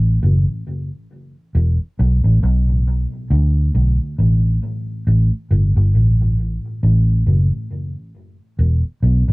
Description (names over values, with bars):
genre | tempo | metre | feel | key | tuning
reggae | 68 BPM | 4/4 | swing 57% on 16ths | E minor | A4 = 440 Hz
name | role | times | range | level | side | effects
vintage muted fingered electric bass | solo | 0.0-9.3 s | E1 to D2 | -14 LUFS | equal | cassette tape, tape echo
room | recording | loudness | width
wet booth ambience, RT60 0.2 s | home recording on cassette | -15 LUFS | side -26 dB against mid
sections
0.0-5.1 A section; 5.1-9.3 B section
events
none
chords
none